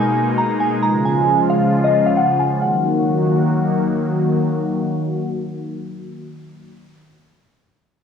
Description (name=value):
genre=hip hop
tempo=134 BPM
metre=4/4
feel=half-time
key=Eb minor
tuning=A4 = 440 Hz
part: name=glassy synth bell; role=melody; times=0.0-3.9 s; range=Eb5 to Bb5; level=-19 LUFS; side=left 1 dB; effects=chorus, phaser, low-pass filter, cassette tape, tape echo
part: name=sweeping resonant pad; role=sustained chords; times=0.0-6.7 s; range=Cb3 to Gb4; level=-18 LUFS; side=left 1 dB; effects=chorus, low-pass filter, cassette tape
room=light reverb, digital ambience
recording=home recording on cassette, studio ambience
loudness=-15 LUFS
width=side -7 dB against mid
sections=0.0-2.6 A section; 2.6-6.2 B section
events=filter sweep 0.0-2.6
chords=0.0 Abmadd9; 0.8 Db; 2.6 Ebm